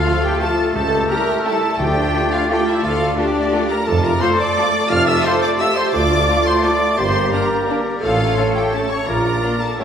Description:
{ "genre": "classical, orchestral ballroom waltz", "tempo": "173 BPM", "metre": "3/4", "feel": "uneven beats, rubato", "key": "D minor", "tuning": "A4 = 440 Hz", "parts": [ { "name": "rich studio violin section", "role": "melody", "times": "0.0-9.8 s", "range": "D5 to F6", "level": "-25 LUFS", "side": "left 2 dB", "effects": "none" }, { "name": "breathy clarinet", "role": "second line", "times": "0.0-9.8 s", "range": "F4 to A4", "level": "-27 LUFS", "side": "equal", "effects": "none" }, { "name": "clear oboe", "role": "second line", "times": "0.0-9.8 s", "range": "C#5 to F5", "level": "-27 LUFS", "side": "left 1 dB", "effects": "none" }, { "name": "concert flute", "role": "second line", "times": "0.0-9.8 s", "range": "D5 to F6", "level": "-25 LUFS", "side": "equal", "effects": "none" }, { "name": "dark bassoon", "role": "accompaniment", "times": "0.0-9.8 s", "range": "A3 to Bb3", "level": "-26 LUFS", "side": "right 1 dB", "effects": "none" }, { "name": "rich studio viola section", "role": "accompaniment", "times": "0.0-9.8 s", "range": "D4 to F5", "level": "-26 LUFS", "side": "equal", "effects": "none" }, { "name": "mellow French horn section", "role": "sustained chords", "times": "0.0-9.8 s", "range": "F3 to F4", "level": "-28 LUFS", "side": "left 1 dB", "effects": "none" }, { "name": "mellow trumpet section", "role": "stabs", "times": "0.0-9.8 s", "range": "D4 to F5", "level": "-24 LUFS", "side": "equal", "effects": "none" }, { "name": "warm studio cello section", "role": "bass", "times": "0.0-9.8 s", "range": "D4 to Bb4", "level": "-24 LUFS", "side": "right 1 dB", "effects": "none" }, { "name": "timpani", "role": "percussion", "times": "0.0-2.3 s", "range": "D3", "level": "-30 LUFS", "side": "equal", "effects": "none" }, { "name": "rich studio violin section", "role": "second line", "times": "0.1-9.8 s", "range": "A3 to G4", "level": "-29 LUFS", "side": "left 3 dB", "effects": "none" }, { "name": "clear studio double bass section", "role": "bass", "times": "0.7-9.8 s", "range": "G1 to F2", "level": "-24 LUFS", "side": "right 1 dB", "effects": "none" }, { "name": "warm tuba", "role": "bass", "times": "0.7-9.8 s", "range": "F1 to D2", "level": "-27 LUFS", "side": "right 1 dB", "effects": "none" } ], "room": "wet scoring stage reverb, RT60 1.5 s", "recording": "heard from further back in the room, lossy compression artefacts", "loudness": "-15 LUFS", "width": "side -8 dB against mid", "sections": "0.0-9.8 A section", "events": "none", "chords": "0.0 Dm; 0.7 A7/C#; 1.8 Dm; 3.9 Dm/F; 5.9 Dm; 7.0 Gm; 8.0 A; 9.1 Bb" }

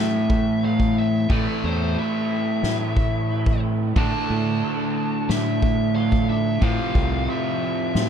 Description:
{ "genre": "post-rock", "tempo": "90 BPM", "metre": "4/4", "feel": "straight", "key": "A minor", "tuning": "A4 = 440 Hz", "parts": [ { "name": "biting lead guitar", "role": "melody", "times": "0.0-8.1 s", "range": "C5 to A5", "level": "-29 LUFS", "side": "left 3 dB", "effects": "overdrive, analog delay" }, { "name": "clean electric guitar", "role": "arpeggios", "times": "0.0-8.1 s", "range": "A2 to F4", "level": "-32 LUFS", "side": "left 4 dB", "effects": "lush chorus, analog delay" }, { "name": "crunchy overdriven guitar", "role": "riff", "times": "0.0-8.1 s", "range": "F2 to D4", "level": "-24 LUFS", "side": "right 3 dB", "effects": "none" }, { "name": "growling fingered electric bass", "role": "bass", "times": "0.0-8.1 s", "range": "C2 to A2", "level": "-23 LUFS", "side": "equal", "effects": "overdrive" }, { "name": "soft-mallet drum kit", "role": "drums", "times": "0.3-8.1 s", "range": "crash cymbal, kick drum, snare drum", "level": "-26 LUFS", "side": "equal", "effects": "none" } ], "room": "small room ambience", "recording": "dark, warm production", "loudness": "-19 LUFS", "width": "side -8 dB against mid", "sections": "0.0-8.1 A section", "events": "none", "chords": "0.0 Am; 4.0 Dmadd9/A; 6.6 F" }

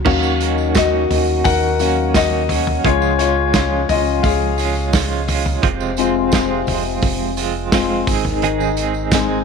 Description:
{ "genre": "piano-driven pop", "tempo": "86 BPM", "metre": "4/4", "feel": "straight", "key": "unclear", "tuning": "A4 = 440 Hz", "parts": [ { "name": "warm concert grand piano", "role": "accompaniment", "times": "0.0-9.4 s", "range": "Gb3 to Gb5", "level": "-19 LUFS", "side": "left 10 dB", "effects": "none" }, { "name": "organ-like FM bass", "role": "bass", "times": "0.0-9.4 s", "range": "F1 to Eb2", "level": "-22 LUFS", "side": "right 2 dB", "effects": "none" }, { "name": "dark French horn section", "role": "second line", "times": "0.1-9.4 s", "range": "C3 to Eb4", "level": "-25 LUFS", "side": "left 9 dB", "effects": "none" }, { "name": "direct-recorded clean electric guitar", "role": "riff", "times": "0.1-9.4 s", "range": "F2 to Ab4", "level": "-22 LUFS", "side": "right 14 dB", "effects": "tremolo" }, { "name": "loose indie drum kit", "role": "drums", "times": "0.1-9.3 s", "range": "crash cymbal, hi-hat, kick drum, snare drum, toms", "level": "-20 LUFS", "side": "right 2 dB", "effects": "none" }, { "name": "tambourine", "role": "percussion", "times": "0.2-9.3 s", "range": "none", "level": "-34 LUFS", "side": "right 16 dB", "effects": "none" } ], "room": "light reverb, small room ambience", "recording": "1960s-style stereo with parts hard left and right", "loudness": "-15 LUFS", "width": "side -5 dB against mid", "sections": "0.1-9.4 A section", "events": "grand piano solo 0.1-9.4", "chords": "0.1 Ebm7; 2.8 Db; 5.6 Fm; 8.1 Ab" }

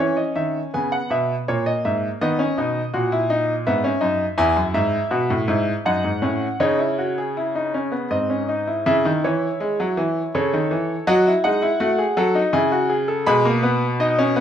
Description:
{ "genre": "classical, baroque-style 3-part fugue for grand piano", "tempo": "82 BPM", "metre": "3/4", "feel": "straight", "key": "C# minor", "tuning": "A4 = 440 Hz", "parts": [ { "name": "bright baby grand piano", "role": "solo", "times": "0.0-14.4 s", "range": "E2 to B5", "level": "-18 LUFS", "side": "equal", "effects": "none" } ], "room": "light reverb", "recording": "minimal, uncompressed stereo recording", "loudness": "-18 LUFS", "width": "side -9 dB against mid", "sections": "0.0-8.9 A section; 8.9-14.4 B section", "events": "none", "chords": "0.0 G#m (rootless); 1.5 C#m69; 2.2 B; 3.7 E/G#; 4.4 Eadd9; 5.9 F#m; 6.6 G#sus4/C# (rootless); 8.1 G#; 8.9 C#m; 10.3 A/C#; 11.1 D#dim/F#; 12.5 C#m; 13.3 G#m/B" }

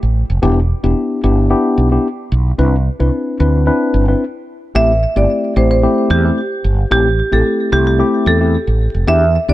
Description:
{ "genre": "afrobeats", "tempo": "111 BPM", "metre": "4/4", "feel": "straight", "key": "A minor", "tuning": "A4 = 440 Hz", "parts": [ { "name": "mellow fretless electric bass", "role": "bass", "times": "0.0-9.5 s", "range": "E1 to E2", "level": "-14 LUFS", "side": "right 1 dB", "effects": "lush chorus" }, { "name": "mellow tine electric piano", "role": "accompaniment", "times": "0.4-9.5 s", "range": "A3 to B4", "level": "-16 LUFS", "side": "left 3 dB", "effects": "none" }, { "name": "marimba with medium hard mallets", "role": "melody", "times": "4.8-9.5 s", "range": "G4 to E5", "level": "-16 LUFS", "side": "right 2 dB", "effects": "digital delay" } ], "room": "small room reverb", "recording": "none", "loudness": "-12 LUFS", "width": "side -15 dB against mid", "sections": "0.0-4.8 A section; 4.8-9.5 B section", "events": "break 4.2-4.8", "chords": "0.4 Em7; 2.6 Cmaj9; 4.8 Am7" }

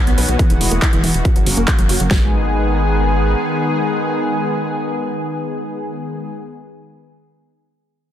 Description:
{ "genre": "uplifting trance", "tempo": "140 BPM", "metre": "4/4", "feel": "straight", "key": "G# minor", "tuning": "A4 = 440 Hz", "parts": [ { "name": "lush unison pad", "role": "sustained chords", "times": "0.0-6.3 s", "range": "C#3 to G#4", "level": "-20 LUFS", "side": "left 1 dB", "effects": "chorus, sidechain pumping" }, { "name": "wide unison pluck", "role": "arpeggios", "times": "0.1-2.3 s", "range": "E2 to B4", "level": "-23 LUFS", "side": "right 2 dB", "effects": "sidechain pumping, tape echo" }, { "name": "tight sequencer bass", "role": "bass", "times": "0.1-3.4 s", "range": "E1 to B1", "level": "-19 LUFS", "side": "equal", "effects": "sidechain pumping" }, { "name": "big-room dance drum kit", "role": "drums", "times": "0.1-2.1 s", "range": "handclaps, hi-hat", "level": "-22 LUFS", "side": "right 1 dB", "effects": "overdrive" }, { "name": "big-room dance drum kit", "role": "drums", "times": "0.4-2.2 s", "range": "kick drum, snare drum", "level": "-15 LUFS", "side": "equal", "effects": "overdrive" } ], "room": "light reverb", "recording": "dense, heavily limited modern master", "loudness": "-15 LUFS", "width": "side -10 dB against mid", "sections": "0.0-2.1 A section; 2.1-5.5 B section", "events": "filter sweep on synth pluck 0.0-2.1", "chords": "0.4 Eadd9; 1.2 F#; 2.1 G#m" }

